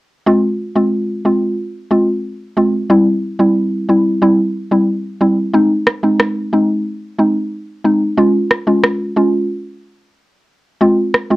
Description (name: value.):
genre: dancehall.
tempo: 91 BPM.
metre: 4/4.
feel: straight.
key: F minor.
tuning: A4 = 441 Hz.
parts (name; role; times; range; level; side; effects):
mallet-like synth pluck; accompaniment; 0.3-11.4 s; G3 to F4; -13 LUFS; equal; chorus, cassette tape.
electronic rim click; drums; 5.9-11.3 s; none; -11 LUFS; equal; cassette tape.
room: moderate small room reverb, RT60 0.5 s.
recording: home recording on cassette.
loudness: -13 LUFS.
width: side -18 dB against mid.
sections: 0.3-10.8 A section.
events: break 9.5-10.8.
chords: 0.3 Fm; 2.9 C; 5.5 Ab; 8.2 Db; 10.8 Fm.